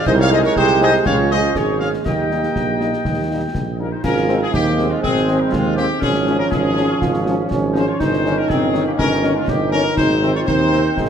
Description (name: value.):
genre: military-style march for wind band.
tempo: 121 BPM.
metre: 2/4.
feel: straight.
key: Ab major.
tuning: A4 = 444 Hz.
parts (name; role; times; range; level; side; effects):
mellow trumpet section; melody; 0.0-11.1 s; Eb4 to G5; -23 LUFS; left 3 dB; none.
warm woodwind section; second line; 0.0-11.1 s; G3 to Eb5; -24 LUFS; left 3 dB; none.
mellow trombone section; sustained chords; 0.0-11.1 s; Eb3 to Eb4; -24 LUFS; right 3 dB; none.
warm euphonium; second line; 0.1-11.1 s; Ab3 to Ab4; -22 LUFS; right 4 dB; none.
warm tuba; bass; 0.1-11.1 s; G1 to Eb2; -20 LUFS; right 2 dB; none.
concert snare drum, clash cymbals and concert bass drum; drums; 0.1-11.1 s; none; -26 LUFS; left 1 dB; none.
warm French horn section; accompaniment; 0.3-10.8 s; C3 to Ab4; -26 LUFS; left 5 dB; none.
room: moderate concert hall reverb, RT60 2.0 s.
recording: none.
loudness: -15 LUFS.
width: side -8 dB against mid.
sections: 0.0-4.0 A section; 4.0-11.1 B section.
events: none.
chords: 0.1 Ab/C; 1.1 Db; 2.1 Eb; 4.0 Ab; 6.0 Db/Ab; 8.0 Eb7/G; 10.0 Ab.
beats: | 0.07 0.57 | 1.06 1.56 | 2.06 2.55 | 3.05 3.54 | 4.04 4.54 | 5.03 5.53 | 6.02 6.52 | 7.01 7.51 | 8.00 8.50 | 8.99 9.49 | 9.98 10.48 | 10.97.